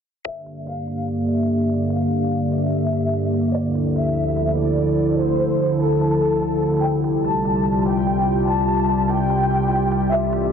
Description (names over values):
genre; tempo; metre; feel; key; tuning
heavy wobble dubstep; 146 BPM; 4/4; swing 54% on 16ths, half-time; G dorian; A4 = 440 Hz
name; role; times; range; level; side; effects
rich studio violin section; melody; 0.3-10.3 s; A4 to A5; -24 LUFS; left 1 dB; ping-pong delay
evolving wavetable pad; sustained chords; 0.6-10.5 s; C2 to D5; -19 LUFS; equal; chorus, built-in reverb
electronic hi-hat; drums; 0.3-10.4 s; none; -46 LUFS; right 2 dB; none
room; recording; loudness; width
moderate lush hall reverb, RT60 1.7 s, digital ambience; dense, heavily limited modern master, low-pass filter; -18 LUFS; side -7 dB against mid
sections
0.3-10.5 A section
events
filter sweep 0.3-10.5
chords
0.3 Gm; 3.5 Dmadd9; 6.8 Csus4